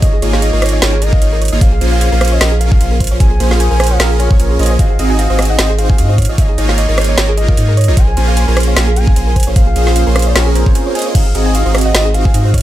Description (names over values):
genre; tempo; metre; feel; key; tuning
future bass; 151 BPM; 4/4; swing 55% on 16ths, half-time; Bb minor; A4 = 440 Hz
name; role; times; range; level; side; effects
soft octave-layered synth lead; melody; 0.0-12.6 s; C5 to Ab5; -22 LUFS; left 2 dB; chorus, sidechain pumping, digital delay
supersaw chords; riff; 0.0-12.5 s; Bb3 to Eb5; -18 LUFS; right 1 dB; lush chorus, sidechain pumping
saturated sub bass; bass; 0.0-12.6 s; Ab1 to Ab2; -13 LUFS; equal; sidechain pumping
electronic kick drum; drums; 0.0-12.6 s; none; -12 LUFS; equal; none
trap drum kit; drums; 0.0-12.6 s; crash cymbal, hi-hat, rim click, snare drum; -17 LUFS; right 1 dB; none
thumb-piano-like synth pluck; arpeggios; 0.1-12.6 s; Ab4 to Bb5; -23 LUFS; right 3 dB; chorus, sidechain pumping, digital delay
room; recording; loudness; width
little or no reverb; none; -10 LUFS; side -14 dB against mid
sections
0.0-12.6 A section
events
break 10.8-11.2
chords
0.0 Db69/Ab; 1.6 Bbm9; 4.8 Ab7; 6.2 Db69/Ab; 8.0 Bbm9; 11.2 Ab7